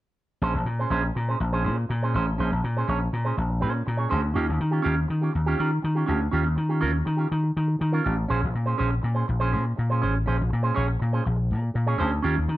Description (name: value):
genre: disco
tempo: 122 BPM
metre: 4/4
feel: straight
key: Bb dorian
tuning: A4 = 440 Hz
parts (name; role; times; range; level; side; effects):
- electric guitar with an envelope filter; accompaniment; 0.4-12.5 s; Db4 to Db5; -28 LUFS; right 4 dB; none
- vintage slap bass; bass; 0.4-12.6 s; A1 to Eb3; -24 LUFS; left 1 dB; none
room: digital ambience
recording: dark, warm production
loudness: -22 LUFS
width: side -16 dB against mid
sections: 0.4-12.6 A section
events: none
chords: 0.4 Bbm9; 4.4 Eb9; 8.3 Bbm9